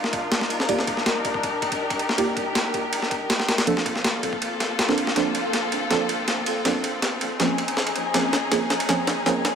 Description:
drum and bass, jungle; 161 BPM; 4/4; straight; C minor; A4 = 440 Hz
warm studio string section; sustained chords; 0.0-9.6 s; Bb3 to Bb4; -26 LUFS; left 2 dB; low-pass filter
soft dub sub bass; bass; 0.0-9.6 s; barely audible
breakbeat sampler-style drum kit; drums; 0.0-9.5 s; kick drum, ride cymbal, snare drum; -24 LUFS; equal; high-pass filter on kick, high-pass filter on cymbals, high-pass filter on snare
deep mellow chord stab; stabs; 0.7-9.3 s; F3 to D5; -26 LUFS; right 3 dB; chorus, dub echo
moderate lush hall reverb, RT60 2.2 s; -21 LUFS; side -7 dB against mid
0.0-9.6 A section
build-up 0.0-9.6; drum fill 5.2-9.6
0.0 Cm11; 3.7 Gm11; 7.4 Bbm11

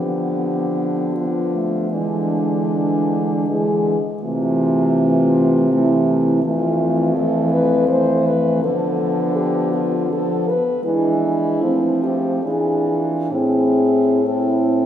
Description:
classical, lyrical piece for horn quartet; 65-84 BPM; 3/4; rubato; A minor; A4 = 440 Hz
mellow French horn; melody; 0.0-14.9 s; D4 to C5; -21 LUFS; left 3 dB
mellow French horn; second line; 0.0-14.9 s; G#3 to F4; -23 LUFS; right 3 dB
mellow French horn; accompaniment; 0.0-14.9 s; E3 to D4; -22 LUFS; equal
warm French horn; bass; 0.0-14.9 s; F2 to F3; -21 LUFS; right 1 dB
moderate cathedral reverb, RT60 4.5 s; studio reverb; -16 LUFS; side -10 dB against mid
0.0-14.9 A section
0.0 Bdim/D; 1.9 E7/D; 4.2 Am/C; 6.4 Fmaj7; 8.6 Bm7b5/D; 10.8 E7; 11.6 Fmaj7; 12.4 E7b9; 13.3 Am

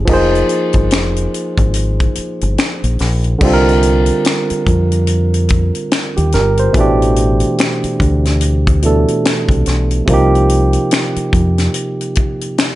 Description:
R&B, neo-soul; 72 BPM; 4/4; swing 59% on 16ths; A4 = 440 Hz
barky tine electric piano; accompaniment; 0.0-12.8 s; B2 to C5; -15 LUFS; right 2 dB; overdrive
deep dub fingered electric bass; bass; 0.0-11.7 s; F1 to F2; -14 LUFS; equal
tight funk drum kit; drums; 0.1-12.8 s; crash cymbal, finger snaps, hi-hat, kick drum, snare drum; -17 LUFS; left 1 dB
light reverb; nothing above 10.9 kHz; -12 LUFS; side -16 dB against mid
0.1-3.4 A section; 3.4-12.8 B section
0.1 Fm7; 3.4 C9sus4; 6.7 Am11; 10.1 Cm7

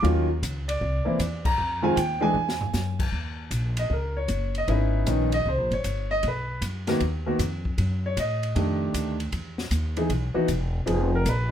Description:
jazz piano trio; 155 BPM; 4/4; swing 67% on 8ths; A4 = 441 Hz
warm concert grand piano; melody; 0.0-11.5 s; Eb3 to Bb5; -25 LUFS; equal
upright bass; bass; 0.0-11.5 s; E1 to A2; -27 LUFS; equal
open jazz drum kit; drums; 0.0-11.4 s; crash cymbal, hi-hat, kick drum, ride cymbal, snare drum, toms; -34 LUFS; left 1 dB
light reverb; -23 LUFS; side -10 dB against mid
0.0-3.1 A section; 3.1-11.5 B section
band accent 1.4; drum fill 2.4-2.7; grand piano solo 3.1-11.5
0.0 Ebm9; 0.8 C7; 1.6 Fm7; 2.4 Eadd9; 3.1 Ebm7; 4.7 Dbm9; 5.5 C5; 6.2 B; 7.8 Gbm; 8.6 F13; 9.3 Emaj7(no3); 10.9 Fm7b5

